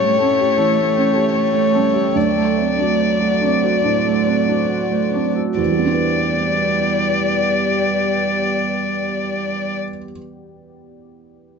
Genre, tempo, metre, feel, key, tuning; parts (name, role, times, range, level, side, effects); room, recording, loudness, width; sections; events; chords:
neoclassical piano and strings; 66-84 BPM; 4/4; rubato; E minor; A4 = 439 Hz
warm violin; melody; 0.0-9.8 s; C#5 to D5; -19 LUFS; left 6 dB
warm cello; second line; 0.0-9.8 s; F#3 to A3; -25 LUFS; right 6 dB
felt-muted upright piano; accompaniment; 0.0-11.6 s; D2 to B4; -21 LUFS; right 7 dB
deep dark ambient pad; sustained chords; 0.0-9.8 s; A3 to G5; -26 LUFS; right 1 dB; chorus, built-in reverb
concert harp; arpeggios; 0.0-9.0 s; D4 to G5; -28 LUFS; left 4 dB; slapback echo
light reverb; nothing above 7.5 kHz; -15 LUFS; side -6 dB against mid
0.0-5.6 A section; 5.6-9.0 B section
slowing down 0.0-5.6
0.0 A7; 2.1 D7; 5.6 Em7